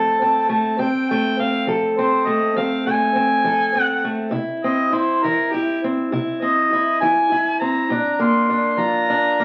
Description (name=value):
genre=acoustic country blues, solo or duo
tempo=67 BPM (dotted quarters)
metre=12/8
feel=straight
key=unclear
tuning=A4 = 440 Hz
part: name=mellow harmonica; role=melody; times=0.0-9.4 s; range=G4 to C6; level=-21 LUFS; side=equal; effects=none
part: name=fingerpicked steel-string acoustic guitar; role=accompaniment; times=0.0-9.4 s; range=F2 to A4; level=-23 LUFS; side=equal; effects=none
room=moderate large studio reverb, RT60 0.8 s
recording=very old 78 rpm record, vinyl crackle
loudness=-19 LUFS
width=mono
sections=0.0-9.4 A section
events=harmonica solo 0.0-9.4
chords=0.0 F; 4.3 C; 7.9 Bb